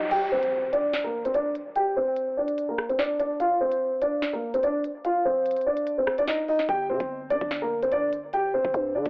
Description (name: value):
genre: hip hop, drill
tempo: 146 BPM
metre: 4/4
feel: half-time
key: G minor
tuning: A4 = 439 Hz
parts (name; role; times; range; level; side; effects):
- dark concert grand piano; melody; 0.0-9.1 s; Bb3 to G5; -23 LUFS; equal; low-pass filter, tape echo
- riser and impact; sound effects; 0.0-1.8 s; none; -37 LUFS; equal; none
- drill drum kit; drums; 0.1-9.1 s; crash cymbal, hi-hat, kick drum, rim click, snare drum; -33 LUFS; equal; none
- growling 808-style bass; bass; 6.7-9.1 s; G1 to D3; -33 LUFS; equal; none
room: light reverb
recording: home recording on cassette, low-pass filter, telephone sound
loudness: -23 LUFS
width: side -32 dB against mid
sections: 0.1-9.1 A section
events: kick muted 0.1-6.7; impact 0.1-1.8; filter sweep on grand piano 0.1-6.7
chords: 0.1 N.C.; 6.7 G5